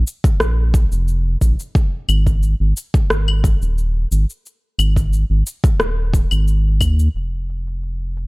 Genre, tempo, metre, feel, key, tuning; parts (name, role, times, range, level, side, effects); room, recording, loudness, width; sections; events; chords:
organic downtempo; 89 BPM; 4/4; straight; A4 = 435 Hz
round analog bass; bass; 0.0-8.3 s; Eb1 to Eb2; -16 LUFS; equal; tube saturation, sidechain pumping
electronic cabasa, rim click and claves; drums; 0.1-8.3 s; -22 LUFS; left 1 dB; overdrive, low-pass filter on perc, studio reverb, low-pass filter on snare
electronic kick drum; drums; 0.2-7.0 s; -16 LUFS; equal; studio reverb
little or no reverb; dry, gritty hardware recording; -15 LUFS; side -24 dB against mid
0.0-7.1 A section; 7.1-8.3 B section